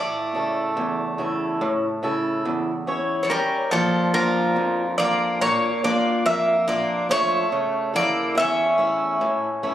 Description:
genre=greek folk, Greek bouzouki band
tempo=142 BPM (eighths)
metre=9/8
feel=straight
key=unclear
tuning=A4 = 440 Hz
part: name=Greek bouzouki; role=melody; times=0.0-9.7 s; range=A4 to E5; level=-23 LUFS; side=equal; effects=none
part: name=Greek bouzouki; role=second line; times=0.0-9.7 s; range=F3 to C#4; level=-25 LUFS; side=left 1 dB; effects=none
part: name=picked swing-style acoustic guitar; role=accompaniment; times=0.0-9.7 s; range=E2 to C#5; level=-24 LUFS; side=equal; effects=none
room=light reverb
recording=recorded on a phone in the room, club reverb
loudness=-20 LUFS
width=side -11 dB against mid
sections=0.0-3.7 A section; 3.7-9.7 B section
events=none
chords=0.0 A; 3.7 Bb; 7.5 A

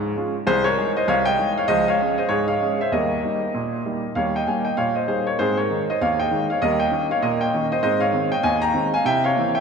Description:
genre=ragtime piano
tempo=98 BPM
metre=2/4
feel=swing 58% on 16ths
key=Ab major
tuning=A4 = 440 Hz
part: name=clear upright piano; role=solo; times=0.0-9.6 s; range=C2 to Bb5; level=-19 LUFS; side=equal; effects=none
room=wet church reverb, RT60 3.8 s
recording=recorded in a church or concert hall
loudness=-19 LUFS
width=side -6 dB against mid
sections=0.0-9.6 A section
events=none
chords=0.5 Ab/C; 1.7 Db; 2.9 Eb; 6.6 Eb7; 7.8 Ab; 9.1 C7

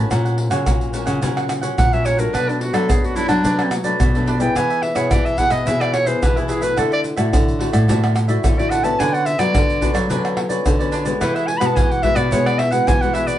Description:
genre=samba and choro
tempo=108 BPM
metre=4/4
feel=straight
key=unclear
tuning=A4 = 441 Hz
part: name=cavaquinho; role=accompaniment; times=0.0-13.4 s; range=D4 to F#5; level=-26 LUFS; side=right 4 dB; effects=none
part: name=nylon-string guitar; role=accompaniment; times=0.0-13.4 s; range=F#2 to G#4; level=-24 LUFS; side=left 4 dB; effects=none
part: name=nylon-string guitar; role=bass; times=0.0-13.3 s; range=A2 to B3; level=-22 LUFS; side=equal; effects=none
part: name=tube shaker, surdo, pandeiro and tamborim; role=percussion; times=0.1-13.4 s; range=none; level=-21 LUFS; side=equal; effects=none
part: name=clear clarinet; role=melody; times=1.8-13.4 s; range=D4 to B5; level=-20 LUFS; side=right 1 dB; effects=none
room=moderate studio ambience, RT60 0.5 s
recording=band playing live in one room, nothing above 10.9 kHz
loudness=-16 LUFS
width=side -12 dB against mid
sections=0.0-13.4 A section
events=clarinet solo 0.0-13.4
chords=0.1 F#/A#; 2.3 Bm7; 4.6 E; 6.8 Dadd9; 9.0 Bmadd9/D; 11.2 Eadd9

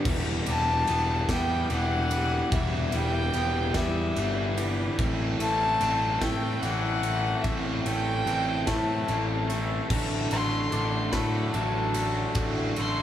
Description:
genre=post-rock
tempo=49 BPM (dotted quarters)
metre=6/8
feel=straight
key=E minor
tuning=A4 = 440 Hz
part: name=twangy electric guitar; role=arpeggios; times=0.0-13.0 s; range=E2 to D4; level=-34 LUFS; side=left 3 dB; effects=spring reverb, slapback echo, digital delay
part: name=distorted electric guitar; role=riff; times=0.0-13.0 s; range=A2 to F#4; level=-31 LUFS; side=equal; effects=distortion
part: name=fuzz picked electric bass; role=bass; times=0.1-13.0 s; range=E1 to A2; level=-29 LUFS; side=equal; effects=overdrive
part: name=big rock drum kit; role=drums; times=0.1-13.0 s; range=crash cymbal, kick drum, ride cymbal, snare drum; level=-32 LUFS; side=equal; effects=none
part: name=warm violin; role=melody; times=0.5-13.0 s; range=E5 to C6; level=-30 LUFS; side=left 1 dB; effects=slapback echo, digital delay
room=moderate scoring stage reverb, RT60 1.8 s, small room ambience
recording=big arena sound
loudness=-24 LUFS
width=side -11 dB against mid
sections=0.0-13.0 A section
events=none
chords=0.1 Em; 5.0 Am; 9.9 D/A

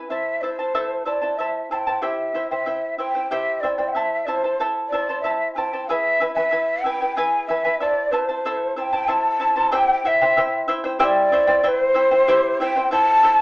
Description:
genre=andean folk, Andean ensemble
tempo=94 BPM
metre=3/4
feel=straight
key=A minor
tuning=A4 = 440 Hz
part: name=charango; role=accompaniment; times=0.0-13.4 s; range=E4 to A5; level=-23 LUFS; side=equal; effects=none
part: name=breathy mellow quena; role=melody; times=0.1-13.4 s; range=C5 to A5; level=-19 LUFS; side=equal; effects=none
room=wet small room reverb, RT60 0.6 s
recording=heard from further back in the room, small speaker sound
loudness=-18 LUFS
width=side -22 dB against mid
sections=0.0-9.7 A section; 9.7-13.4 B section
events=none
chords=0.1 Am; 2.0 C; 4.0 Am; 5.9 E; 7.8 Am; 9.7 C

